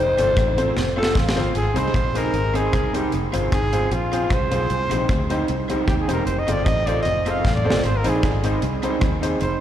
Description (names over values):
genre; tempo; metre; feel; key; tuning
ska; 153 BPM; 4/4; straight; unclear; A4 = 440 Hz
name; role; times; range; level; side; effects
raspy alto saxophone; melody; 0.0-1.6 s; F4 to C5; -24 LUFS; left 2 dB; tape echo, slapback echo
fingered electric bass; bass; 0.0-9.6 s; E1 to Eb2; -24 LUFS; equal; none
electric guitar at the edge of break-up; accompaniment; 0.2-9.4 s; C4 to A4; -27 LUFS; right 4 dB; analog chorus, tape echo, slapback echo
warm upright piano; stabs; 0.2-9.4 s; C4 to C5; -27 LUFS; left 4 dB; tape echo, slapback echo
deep reggae drum kit; drums; 0.2-9.5 s; hi-hat, kick drum, rim click, snare drum, toms; -24 LUFS; equal; tape echo
warm trumpet; melody; 1.6-9.6 s; F4 to F5; -25 LUFS; equal; tape echo, slapback echo
room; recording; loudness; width
light reverb, small room ambience; live gig heard through the venue's PA, recital hall reverb; -18 LUFS; side -10 dB against mid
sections
0.0-1.6 A section; 1.6-9.6 A section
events
alto saxophone solo 0.0-1.6; drum fill 0.8-1.6, 7.4-7.8; trumpet solo 1.6-9.6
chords
0.0 F; 1.6 Ab; 3.1 Fm; 4.7 Cm; 6.3 F; 7.8 Ab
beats
0.37 0.77 1.16 | 1.55 1.95 2.34 2.73 | 3.12 3.52 3.91 4.30 | 4.70 5.09 5.48 5.88 | 6.27 6.66 7.05 7.45 | 7.84 8.23 8.63 9.02 | 9.41